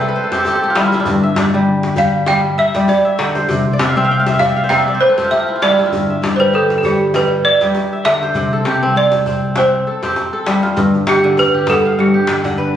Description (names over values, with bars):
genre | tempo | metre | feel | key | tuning
west african traditional, West African string and xylophone music | 99 BPM | 4/4 | swing 55% on 16ths | G mixolydian | A4 = 440 Hz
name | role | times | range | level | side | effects
balafon | melody | 0.0-12.8 s | G4 to G5 | -15 LUFS | right 2 dB | none
kora | arpeggios | 0.0-12.8 s | G2 to G5 | -16 LUFS | left 1 dB | none
modern bright fingered electric bass | bass | 0.0-12.8 s | G1 to C3 | -21 LUFS | left 1 dB | none
djembe | percussion | 0.2-12.6 s | none | -23 LUFS | left 2 dB | none
room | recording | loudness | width
moderate recital hall reverb, RT60 1.4 s | recorded on a phone in the room, studio reverb, compression | -12 LUFS | side -10 dB against mid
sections
0.0-10.8 A section; 10.8-12.8 B section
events
kora fill 0.0-1.1, 3.7-5.9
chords
0.0 C; 1.1 G5; 3.5 C5; 5.9 G5; 8.3 C; 10.8 G